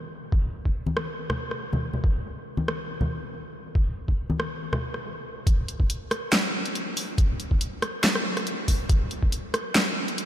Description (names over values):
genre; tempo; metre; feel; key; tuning
dubstep; 140 BPM; 4/4; swing 54% on 16ths, half-time; none; none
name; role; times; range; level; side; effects
electronic kick drum; drums; 0.3-9.3 s; none; -23 LUFS; equal; none
congas; percussion; 0.9-4.8 s; none; -31 LUFS; left 1 dB; dub echo
deep house drum kit; drums; 1.0-10.3 s; handclaps, hi-hat, rim click, snare drum; -27 LUFS; equal; low-pass filter on snare, low-pass filter on hats
room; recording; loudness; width
moderate huge ambient reverb, RT60 4.7 s; dreamy mix soaked in reverb; -24 LUFS; side -11 dB against mid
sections
0.0-5.5 A section; 5.5-10.3 B section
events
stop 5.0-5.5; drop 5.5-10.3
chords
none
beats
| 0.33 0.75 1.18 1.61 | 2.04 2.47 2.90 3.33 | 3.75 4.18 4.61 5.04 | 5.47 5.90 6.33 6.75 | 7.18 7.61 8.04 8.47 | 8.90 9.32 9.75 10.18